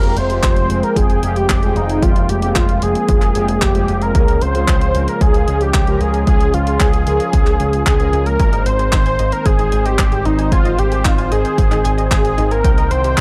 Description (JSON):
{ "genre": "italo disco", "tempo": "113 BPM", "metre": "4/4", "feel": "straight", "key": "F minor", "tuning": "A4 = 440 Hz", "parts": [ { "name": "unison lead", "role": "melody", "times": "0.0-13.2 s", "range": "Eb4 to C5", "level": "-21 LUFS", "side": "equal", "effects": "tape echo" }, { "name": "warm analog pad", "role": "sustained chords", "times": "0.0-13.2 s", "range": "Eb3 to G5", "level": "-26 LUFS", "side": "equal", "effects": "chorus" }, { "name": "analog synth brass", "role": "stabs", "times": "0.0-8.4 s", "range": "Db3 to Bb4", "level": "-27 LUFS", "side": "equal", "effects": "chorus, cassette tape" }, { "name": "picked electric bass with an envelope filter", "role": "bass", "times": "0.0-13.2 s", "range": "F1 to Db2", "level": "-21 LUFS", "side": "equal", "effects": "none" }, { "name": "clean 12-bit digital drum machine", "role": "drums", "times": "0.0-13.2 s", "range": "handclaps, hi-hat", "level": "-26 LUFS", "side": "equal", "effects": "none" }, { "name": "electronic kick drum", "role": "drums", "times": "0.4-13.2 s", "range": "none", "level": "-18 LUFS", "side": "equal", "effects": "none" }, { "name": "analog pluck", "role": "arpeggios", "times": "8.4-13.2 s", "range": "Eb4 to Ab5", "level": "-30 LUFS", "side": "equal", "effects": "chorus, tape echo" } ], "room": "little or no reverb", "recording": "dry, gritty hardware recording", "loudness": "-15 LUFS", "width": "mono", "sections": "0.0-13.2 A section", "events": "none", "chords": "0.0 Fmadd9; 4.1 Db; 8.4 Ab; 12.6 Cm", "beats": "0.43 0.96 1.49 | 2.02 2.56 3.09 3.62 | 4.15 4.68 5.21 5.74 | 6.27 6.80 7.33 7.87 | 8.40 8.93 9.46 9.99 | 10.52 11.05 11.58 12.11 | 12.64 13.18" }